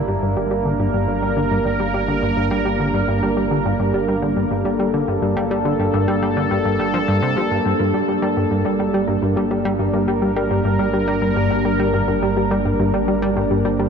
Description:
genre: ambient, sequencer-driven space music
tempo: 105 BPM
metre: 4/4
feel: straight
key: G minor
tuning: A4 = 440 Hz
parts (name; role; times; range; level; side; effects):
- sweeping resonant pad; sustained chords; 0.0-13.9 s; G3 to C5; -19 LUFS; right 1 dB; chorus
- warbly dusty pluck; arpeggios; 0.0-13.9 s; D4 to Bb4; -30 LUFS; left 5 dB; none
- plucky analog bass; riff; 0.0-13.9 s; G2 to G3; -21 LUFS; equal; tape echo
- analog drone; bass; 0.0-13.9 s; G1; -28 LUFS; equal; chorus
room: wet huge ambient reverb, RT60 7.4 s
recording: none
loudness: -17 LUFS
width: side -6 dB against mid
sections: 0.0-13.9 A section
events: none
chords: 0.0 Gm

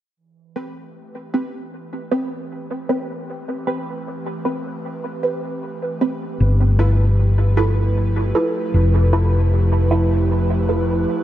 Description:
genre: ambient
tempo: 77 BPM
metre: 4/4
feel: swing 57% on 16ths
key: A minor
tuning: A4 = 440 Hz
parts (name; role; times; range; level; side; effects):
- airy breathy pad; sustained chords; 0.2-11.2 s; E3 to B4; -26 LUFS; equal; chorus, vintage 12-bit sampler grit
- filtered dub chord stab; stabs; 0.6-11.0 s; C4 to B4; -24 LUFS; right 2 dB; phaser, ensemble chorus, dub echo
- hollow-body short-scale fingered electric bass; bass; 6.4-11.0 s; F1 to G1; -16 LUFS; equal; none
room: moderate lush hall reverb, RT60 2.1 s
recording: none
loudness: -17 LUFS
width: side -13 dB against mid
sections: 0.2-11.2 A section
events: fade-in on analog synth pad 0.2-11.2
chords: 0.2 Am9; 6.4 G13

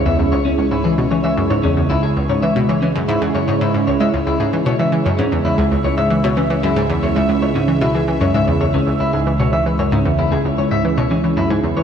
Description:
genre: ambient, sequencer-driven space music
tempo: 114 BPM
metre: 4/4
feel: straight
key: C# minor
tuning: A4 = 442 Hz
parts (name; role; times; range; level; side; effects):
- phased analog pad; sustained chords; 0.0-11.8 s; C#3 to E5; -19 LUFS; right 1 dB; phaser, chorus
- electric guitar at the edge of break-up; arpeggios; 0.0-11.8 s; C#4 to E5; -21 LUFS; left 2 dB; auto-pan, ping-pong delay
- analog drone; bass; 0.0-11.8 s; C#2; -25 LUFS; equal; chorus
- analog pluck; riff; 0.1-11.8 s; C#2 to G#3; -19 LUFS; equal; chorus, ping-pong delay
room: wet lush hall reverb, RT60 3.1 s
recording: dark, warm production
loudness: -14 LUFS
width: side -8 dB against mid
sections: 0.0-11.8 A section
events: none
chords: 0.0 C#m

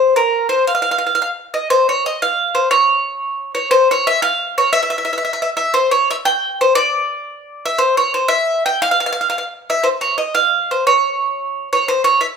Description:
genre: italian folk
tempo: 118 BPM (dotted quarters)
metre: 6/8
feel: rubato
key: unclear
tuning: A4 = 440 Hz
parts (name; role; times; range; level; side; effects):
- bowl-back mandolin; solo; 0.0-12.3 s; Bb4 to G5; -14 LUFS; equal; none
room: moderate large studio reverb, RT60 1.1 s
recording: band playing live in one room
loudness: -14 LUFS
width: side -6 dB against mid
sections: 0.0-1.7 A section; 1.7-9.8 B section; 9.8-12.4 B section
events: none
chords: none

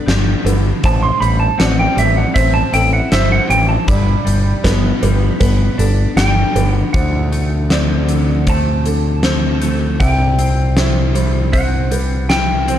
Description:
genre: post-rock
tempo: 78 BPM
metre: 4/4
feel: straight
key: unclear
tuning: A4 = 441 Hz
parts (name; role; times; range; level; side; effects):
- clean lap steel guitar; melody; 0.0-12.8 s; B4 to C6; -20 LUFS; right 2 dB; slapback echo
- clean electric guitar; arpeggios; 0.0-12.8 s; G2 to E4; -22 LUFS; left 3 dB; analog chorus, slapback echo
- felt-muted upright piano; arpeggios; 0.0-12.8 s; A4 to E5; -26 LUFS; right 6 dB; slapback echo
- growling picked electric bass; bass; 0.1-12.8 s; G1 to D2; -16 LUFS; equal; overdrive
- huge arena drum kit; drums; 0.1-12.8 s; hi-hat, kick drum, snare drum; -18 LUFS; equal; none
room: studio ambience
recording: dark, warm production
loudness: -12 LUFS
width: side -10 dB against mid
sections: 0.0-6.9 A section; 6.9-12.8 B section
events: none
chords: 0.0 G; 0.8 Am7; 3.9 G; 6.9 D7; 10.0 Cmaj7

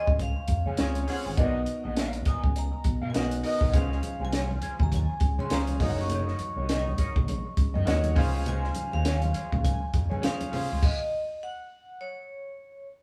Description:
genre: lush 1970s-style soul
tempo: 102 BPM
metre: 4/4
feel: swing 58% on 16ths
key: Db major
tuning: A4 = 437 Hz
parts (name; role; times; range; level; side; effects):
- vibraphone with medium hard mallets; melody; 0.0-12.9 s; Db5 to Db6; -38 LUFS; equal; none
- clear concert grand piano; accompaniment; 0.0-10.8 s; Cb4 to Bb5; -36 LUFS; equal; none
- electric guitar through a small old amp; riff; 0.0-10.9 s; Eb4 to F5; -40 LUFS; equal; wah
- overdriven fingered electric bass; bass; 0.1-10.8 s; Gb1 to Db3; -32 LUFS; equal; none
- compact cocktail drum kit; drums; 0.1-11.0 s; crash cymbal, hi-hat, kick drum, snare drum; -30 LUFS; equal; none
- congas; percussion; 3.7-10.7 s; none; -39 LUFS; equal; none
room: moderate stone room reverb, RT60 1.3 s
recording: band playing live in one room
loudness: -27 LUFS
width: mono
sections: 0.0-13.0 A section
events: stop 10.8-13.0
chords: 0.0 Dbmaj7; 1.4 Cbmaj7; 3.7 Dbmaj7; 5.8 Gb6; 8.2 Dbmaj7; 10.8 N.C.

